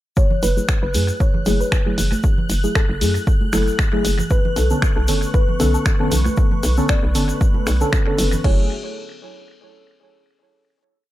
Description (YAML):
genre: deep house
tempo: 116 BPM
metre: 4/4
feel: swing 55% on 16ths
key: F# minor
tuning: A4 = 440 Hz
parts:
  - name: soft round pluck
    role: melody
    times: 0.2-8.6 s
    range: A4 to D5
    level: -28 LUFS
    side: left 1 dB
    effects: wide subtle chorus, tape echo
  - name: electronic kick drum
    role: drums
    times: 0.2-8.6 s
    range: none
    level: -18 LUFS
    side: equal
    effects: none
  - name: tube shaker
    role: percussion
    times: 0.2-8.4 s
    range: none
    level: -32 LUFS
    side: left 5 dB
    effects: none
  - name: string machine, violins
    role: texture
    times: 0.2-8.5 s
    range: F#6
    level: -33 LUFS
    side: left 1 dB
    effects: ensemble chorus, sidechain pumping
  - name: congas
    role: percussion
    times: 0.3-8.4 s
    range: none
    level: -28 LUFS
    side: right 4 dB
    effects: none
  - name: hollow knocking FM bass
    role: bass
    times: 0.4-8.7 s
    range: F#1 to F#2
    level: -20 LUFS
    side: equal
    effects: sidechain pumping
  - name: punchy analog drum machine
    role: drums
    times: 0.4-8.6 s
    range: crash cymbal, finger snaps, hi-hat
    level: -26 LUFS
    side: equal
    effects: tape echo
  - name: deep mellow chord stab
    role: stabs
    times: 0.6-8.6 s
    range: D3 to A4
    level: -23 LUFS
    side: equal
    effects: chorus, sidechain pumping, tape echo
  - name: warm analog pad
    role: sustained chords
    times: 4.3-8.7 s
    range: A3 to C#6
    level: -30 LUFS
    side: equal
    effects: chorus, sidechain pumping
room: light reverb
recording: echo-heavy mix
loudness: -16 LUFS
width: side -15 dB against mid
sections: 0.2-8.4 groove; 8.4-10.5 final chord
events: filter sweep on synth stab 0.2-8.4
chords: 0.2 F#m9; 4.3 Bm9; 8.4 F#m9